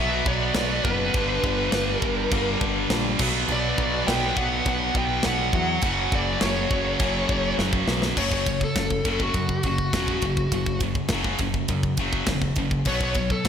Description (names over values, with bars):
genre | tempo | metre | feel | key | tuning
heavy metal | 102 BPM | 4/4 | straight | unclear | A4 = 440 Hz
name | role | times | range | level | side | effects
high-gain lead guitar | melody | 0.0-13.5 s | F#4 to G5 | -28 LUFS | equal | distortion, slapback echo
warm chamber string section | sustained chords | 0.0-8.1 s | F#3 to D5 | -38 LUFS | right 1 dB | none
distorted electric guitar | riff | 0.0-8.2 s | F#2 to B3 | -31 LUFS | right 1 dB | overdrive, slapback echo
high-gain distorted guitar | riff | 0.0-13.5 s | F#2 to B3 | -29 LUFS | left 9 dB | distortion
scooped high-gain guitar | riff | 0.0-13.5 s | F#2 to B3 | -29 LUFS | right 10 dB | distortion, slapback echo
growling picked electric bass | bass | 0.0-13.5 s | E1 to F#2 | -29 LUFS | equal | overdrive
tight metal drum kit | drums | 0.3-13.5 s | crash cymbal, kick drum, ride cymbal, snare drum | -27 LUFS | equal | none
room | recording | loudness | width
moderate lush hall reverb, RT60 1.8 s, studio ambience | big arena sound | -21 LUFS | side -8 dB against mid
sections
0.0-8.2 A section; 8.2-13.5 B section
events
drum fill 7.6-8.2; lead electric guitar solo 8.2-13.5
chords
0.0 Bm; 1.1 G; 3.2 Bm; 5.8 F#; 8.2 F#5; 12.9 B5